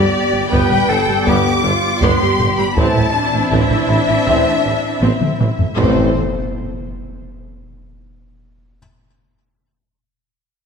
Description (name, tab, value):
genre	cinematic, hybrid orchestral and electronic film score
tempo	80 BPM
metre	4/4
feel	straight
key	A minor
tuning	A4 = 437 Hz
part	rich symphonic violin section	melody	0.0-6.2 s	C5 to D6	-21 LUFS	left 3 dB	none
part	rich symphonic violin section	second line	0.0-6.2 s	C4 to D6	-23 LUFS	left 5 dB	none
part	rich symphonic viola section	accompaniment	0.0-6.2 s	D3 to A4	-23 LUFS	right 1 dB	none
part	airy breathy pad	sustained chords	0.0-6.2 s	E3 to D5	-23 LUFS	left 3 dB	chorus
part	warm French horn section	sustained chords	0.0-6.1 s	B3 to C5	-25 LUFS	left 3 dB	none
part	warm trombone section	sustained chords	0.0-6.1 s	A2 to G3	-26 LUFS	right 3 dB	none
part	rich symphonic cello section	bass	0.0-6.2 s	A2 to B4	-22 LUFS	right 2 dB	none
part	warm symphonic double bass section	bass	0.0-6.2 s	G1 to A1	-21 LUFS	right 3 dB	none
part	felt-muted upright piano	texture	0.0-5.8 s	E5 to E6	-29 LUFS	equal	none
part	warm tuba	bass	0.5-6.1 s	G1 to A1	-24 LUFS	right 3 dB	none
part	taiko ensemble	drums	0.5-5.9 s	none	-21 LUFS	left 1 dB	none
part	impact	sound effects	5.8-8.8 s	none	-26 LUFS	equal	none
room	wet scoring stage reverb, RT60 1.6 s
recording	none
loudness	-13 LUFS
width	side -6 dB against mid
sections	0.0-5.8 A section; 5.8-8.8 B section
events	drum fill 5.0-5.8; impact 5.8-8.8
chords	0.0 G; 2.8 Am